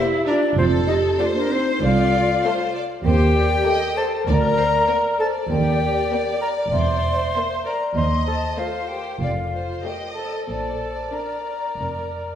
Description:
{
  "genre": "cinematic, playful, whimsical film cue",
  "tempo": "97 BPM",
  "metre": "4/4",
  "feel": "straight",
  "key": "Bb major",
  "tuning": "A4 = 441 Hz",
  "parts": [
    { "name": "rich studio violin section", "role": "melody", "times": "0.0-11.6 s", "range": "A3 to D4", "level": "-31 LUFS", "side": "left 3 dB", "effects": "none" },
    { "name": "vibraphone with soft mallets", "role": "melody", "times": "0.0-12.4 s", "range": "D4 to E5", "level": "-26 LUFS", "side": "right 2 dB", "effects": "none" },
    { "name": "silver concert flute", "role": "second line", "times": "0.0-12.4 s", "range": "Bb4 to C6", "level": "-24 LUFS", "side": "left 3 dB", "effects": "none" },
    { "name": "warm studio violin section", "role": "second line", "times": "0.0-12.4 s", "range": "A4 to Eb5", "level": "-28 LUFS", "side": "left 2 dB", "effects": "none" },
    { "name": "dark studio viola section", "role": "accompaniment", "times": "0.0-12.4 s", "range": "Bb3 to C5", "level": "-27 LUFS", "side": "equal", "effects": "none" },
    { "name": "dark studio double bass section", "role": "bass", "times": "0.6-12.3 s", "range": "E1 to Eb2", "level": "-24 LUFS", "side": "right 1 dB", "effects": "none" },
    { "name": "warm symphonic cello section", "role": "bass", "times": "0.6-12.3 s", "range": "C2 to Bb2", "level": "-26 LUFS", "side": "right 1 dB", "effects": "none" }
  ],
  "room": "wet scoring stage reverb, RT60 1.6 s",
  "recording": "heard from further back in the room",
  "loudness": "-18 LUFS",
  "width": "side -9 dB against mid",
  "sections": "0.0-12.4 A section",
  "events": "none",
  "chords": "0.0 Em7b5; 0.6 F; 3.0 Cm13/Eb; 4.3 Bb/D; 5.5 Eb; 6.7 C7/E; 8.0 F9/Eb; 9.2 F7; 10.5 Bb"
}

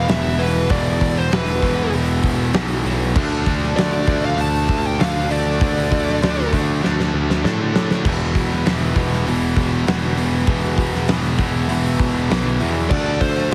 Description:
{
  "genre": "hard rock",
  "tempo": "98 BPM",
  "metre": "4/4",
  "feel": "straight",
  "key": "E minor",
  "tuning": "A4 = 440 Hz",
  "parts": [
    { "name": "high-gain lead guitar", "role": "melody", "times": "0.0-6.5, 12.9-13.5 s", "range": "B4 to A5", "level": "-26 LUFS", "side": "equal", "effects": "distortion" },
    { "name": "overdriven tonewheel organ", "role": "sustained chords", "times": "0.0-13.5 s", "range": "none", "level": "barely audible", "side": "none", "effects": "none" },
    { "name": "high-gain distorted guitar", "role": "riff", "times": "0.0-13.5 s", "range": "E2 to D4", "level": "-29 LUFS", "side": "equal", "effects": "distortion" },
    { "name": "overdriven electric guitar", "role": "riff", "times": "0.0-13.5 s", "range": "E2 to D4", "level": "-28 LUFS", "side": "equal", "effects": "none" },
    { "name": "tight distorted guitar", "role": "riff", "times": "0.0-13.5 s", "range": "E2 to D4", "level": "-31 LUFS", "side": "equal", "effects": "distortion" },
    { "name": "modern bright picked electric bass", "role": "bass", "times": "0.0-13.5 s", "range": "E1 to A2", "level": "-24 LUFS", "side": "equal", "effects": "none" },
    { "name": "big rock drum kit", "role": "drums", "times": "0.1-13.5 s", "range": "crash cymbal, hi-hat, kick drum, snare drum", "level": "-24 LUFS", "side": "equal", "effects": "none" }
  ],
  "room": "light reverb",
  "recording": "heavily compressed radio sound, multiband compression",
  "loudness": "-19 LUFS",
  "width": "mono",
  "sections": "0.0-13.5 A section",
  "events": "drum fill 6.8-8.0",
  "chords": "0.0 Em; 3.2 D5; 8.0 Em; 12.9 D5"
}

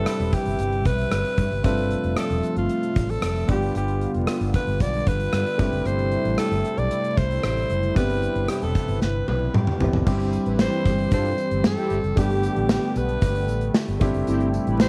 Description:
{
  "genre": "1980s-style pop",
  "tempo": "114 BPM",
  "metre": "4/4",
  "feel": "straight",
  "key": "unclear",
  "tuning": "A4 = 440 Hz",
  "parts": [
    { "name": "growling alto saxophone", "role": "melody", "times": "0.0-14.9 s", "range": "F4 to D5", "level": "-30 LUFS", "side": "equal", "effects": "none" },
    { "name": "warm concert grand piano", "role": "accompaniment", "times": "0.0-14.9 s", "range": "G2 to E5", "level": "-31 LUFS", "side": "equal", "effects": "none" },
    { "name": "warm analog pad", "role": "sustained chords", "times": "0.0-14.9 s", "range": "C3 to E5", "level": "-32 LUFS", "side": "equal", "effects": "chorus" },
    { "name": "vintage muted fingered electric bass", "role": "bass", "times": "0.0-14.9 s", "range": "E1 to G2", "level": "-28 LUFS", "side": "equal", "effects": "none" },
    { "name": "gated 80s drum kit", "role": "drums", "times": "0.1-14.9 s", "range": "crash cymbal, hi-hat, kick drum, rim click, snare drum, toms", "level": "-27 LUFS", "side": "equal", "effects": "none" },
    { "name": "analog synth brass", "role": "stabs", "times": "10.1-14.9 s", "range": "C4 to B4", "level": "-31 LUFS", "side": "equal", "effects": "chorus" },
    { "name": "tambourine", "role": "percussion", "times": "10.1-14.9 s", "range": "none", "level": "-53 LUFS", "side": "equal", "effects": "none" }
  ],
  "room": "little or no reverb",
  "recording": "vinyl crackle",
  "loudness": "-23 LUFS",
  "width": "mono",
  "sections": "0.0-10.1 A section; 10.1-14.9 B section",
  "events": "drum fill 9.0-10.1",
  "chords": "0.0 Cmaj7; 1.6 Fmaj7; 3.5 G7; 5.6 Am7; 8.0 Cmaj7; 10.1 C/G; 12.2 Gadd9; 14.0 Am7"
}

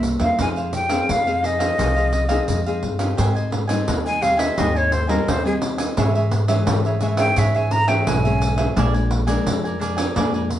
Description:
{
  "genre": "samba and choro",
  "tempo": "86 BPM",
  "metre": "4/4",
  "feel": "straight",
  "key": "F minor, Ab major from 3.2 s",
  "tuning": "A4 = 440 Hz",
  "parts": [
    { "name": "cavaquinho", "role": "accompaniment", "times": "0.0-10.5 s", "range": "D4 to Ab5", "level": "-26 LUFS", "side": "right 2 dB", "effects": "none" },
    { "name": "nylon-string guitar", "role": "accompaniment", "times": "0.0-10.6 s", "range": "F2 to Ab4", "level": "-25 LUFS", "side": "left 3 dB", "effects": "none" },
    { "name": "upright bass", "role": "bass", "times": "0.0-10.6 s", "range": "Bb1 to Ab2", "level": "-23 LUFS", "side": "equal", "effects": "none" },
    { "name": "pandeiro", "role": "percussion", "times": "0.0-10.6 s", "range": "none", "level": "-25 LUFS", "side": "right 1 dB", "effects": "none" },
    { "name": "breathy jazz flute", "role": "melody", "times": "0.2-8.8 s", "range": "Ab4 to Bb5", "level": "-22 LUFS", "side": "equal", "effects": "none" }
  ],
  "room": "wet studio reverb, RT60 0.8 s",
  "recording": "band playing live in one room, nothing above 10.7 kHz",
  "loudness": "-17 LUFS",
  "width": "side -12 dB against mid",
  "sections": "0.0-3.2 A section; 3.2-10.6 B section",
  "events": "flute solo 3.2-10.6",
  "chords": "0.4 Fm7; 3.2 Abmaj7; 6.0 Dbm/Ab; 8.8 Bb7"
}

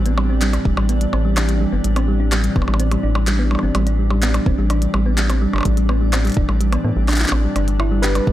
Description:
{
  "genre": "IDM",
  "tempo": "126 BPM",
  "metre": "4/4",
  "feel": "straight",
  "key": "A minor",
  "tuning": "A4 = 440 Hz",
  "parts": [
    { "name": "glassy FM pad", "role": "sustained chords", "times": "0.0-8.3 s", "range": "A2 to E5", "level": "-24 LUFS", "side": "equal", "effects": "ensemble chorus, built-in reverb" },
    { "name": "rubbery square bass", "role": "bass", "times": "0.0-8.3 s", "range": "D1 to A2", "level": "-18 LUFS", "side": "equal", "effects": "transformer saturation" },
    { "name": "thumb-piano-like synth pluck", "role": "arpeggios", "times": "0.1-8.3 s", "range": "G3 to G4", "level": "-23 LUFS", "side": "right 2 dB", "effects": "chorus, analog delay" },
    { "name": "glitchy drum kit", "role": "drums", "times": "0.1-8.2 s", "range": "handclaps, hi-hat, percussion blips", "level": "-24 LUFS", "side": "equal", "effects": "none" },
    { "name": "electronic kick drum", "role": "drums", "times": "0.7-8.3 s", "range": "none", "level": "-19 LUFS", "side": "equal", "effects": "none" },
    { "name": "bubbling stepped-filter texture", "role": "texture", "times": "8.2-8.3 s", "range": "D4 to D5", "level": "-40 LUFS", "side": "left 4 dB", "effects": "none" },
    { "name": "warbly lo-fi synth keys", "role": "melody", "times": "8.0-8.3 s", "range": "B4", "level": "-21 LUFS", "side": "right 1 dB", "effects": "chorus" }
  ],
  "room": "little or no reverb",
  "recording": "dry, gritty hardware recording, transformer saturation",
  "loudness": "-15 LUFS",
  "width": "side -14 dB against mid",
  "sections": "0.0-8.3 A section",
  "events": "none",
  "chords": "0.0 Am11; 7.6 G6"
}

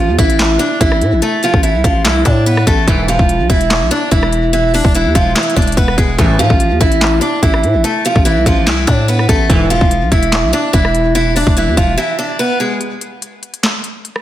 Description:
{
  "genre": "hip hop, trap",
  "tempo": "145 BPM",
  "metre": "4/4",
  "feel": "half-time",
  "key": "A harmonic minor",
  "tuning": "A4 = 438 Hz",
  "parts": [
    { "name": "picked steel-string acoustic guitar", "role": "melody", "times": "0.0-12.8 s", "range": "E3 to D5", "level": "-14 LUFS", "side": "right 1 dB", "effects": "low-pass filter, diffuse ambient delay" },
    { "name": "growling 808-style bass", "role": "bass", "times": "0.0-12.0 s", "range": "E1 to A2", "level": "-15 LUFS", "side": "equal", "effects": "none" },
    { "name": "trap drum kit", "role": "drums", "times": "0.2-14.2 s", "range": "handclaps, hi-hat, kick drum, rim click, snare drum", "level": "-15 LUFS", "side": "equal", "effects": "none" },
    { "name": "resonant sweep polysynth", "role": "stabs", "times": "2.9-3.1, 6.2-6.4, 9.5-9.7 s", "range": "B1 to E3", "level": "-20 LUFS", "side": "equal", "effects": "chorus, tremolo" }
  ],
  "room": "moderate plate reverb, RT60 1.2 s",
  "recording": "dreamy mix soaked in reverb",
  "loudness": "-10 LUFS",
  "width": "side -13 dB against mid",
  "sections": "0.0-12.8 A section; 12.8-14.2 B section",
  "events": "break 12.0-12.8, 12.8-14.2; filter sweep on steel-string acoustic guitar 12.8-14.2",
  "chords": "0.0 A5; 2.9 N.C.; 6.2 Am; 9.5 N.C."
}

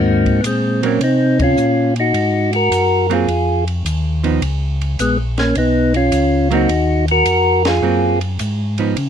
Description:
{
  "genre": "soul jazz organ trio",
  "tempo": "106 BPM",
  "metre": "4/4",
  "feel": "swing 68% on 8ths",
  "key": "Ab mixolydian",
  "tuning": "A4 = 440 Hz",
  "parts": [
    { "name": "percussive tonewheel organ", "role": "melody", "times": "0.0-8.2 s", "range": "Ab2 to Bb4", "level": "-15 LUFS", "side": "left 1 dB", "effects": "slow rotary speaker" },
    { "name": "mellow tonewheel organ", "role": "bass", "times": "0.0-9.1 s", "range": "Bb1 to Db3", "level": "-18 LUFS", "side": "equal", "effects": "chorus vibrato, slow rotary speaker" },
    { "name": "compact cocktail drum kit", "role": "drums", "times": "0.3-9.1 s", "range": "hi-hat, kick drum, ride cymbal, snare drum", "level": "-26 LUFS", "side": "right 1 dB", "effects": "none" },
    { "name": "hollow-body jazz guitar", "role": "accompaniment", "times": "0.8-9.0 s", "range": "F3 to Eb4", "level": "-19 LUFS", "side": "right 8 dB", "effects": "none" }
  ],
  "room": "light reverb",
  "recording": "none",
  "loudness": "-14 LUFS",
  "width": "side -8 dB against mid",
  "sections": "0.0-9.1 A section",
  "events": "band accent 1.3, 7.5",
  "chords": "0.0 Ab9; 4.4 Db9; 6.7 Ab9"
}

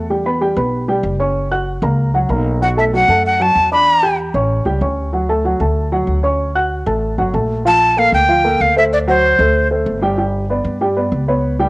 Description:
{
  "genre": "latin",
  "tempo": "190 BPM",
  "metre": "4/4",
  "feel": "straight",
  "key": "D major",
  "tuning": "A4 = 440 Hz",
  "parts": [
    { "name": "dark upright piano", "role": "accompaniment", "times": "0.0-11.7 s", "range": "F3 to G6", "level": "-17 LUFS", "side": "equal", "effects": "cassette tape" },
    { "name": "upright bass", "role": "bass", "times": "0.0-11.7 s", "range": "F#1 to G2", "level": "-19 LUFS", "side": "equal", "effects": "none" },
    { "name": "breathy bright jazz flute", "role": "melody", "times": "2.6-4.2, 7.7-9.7 s", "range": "C5 to B5", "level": "-12 LUFS", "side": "equal", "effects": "cassette tape" }
  ],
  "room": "light reverb",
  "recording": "home recording on cassette",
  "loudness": "-13 LUFS",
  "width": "side -24 dB against mid",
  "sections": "0.0-7.7 A section; 7.7-11.7 B section",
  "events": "none",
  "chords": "0.1 Emadd9; 1.4 F#; 2.6 Bm7; 3.9 Em7; 4.5 A7; 5.1 Dmaj7; 7.7 Bbmaj7; 8.9 D7; 10.2 G"
}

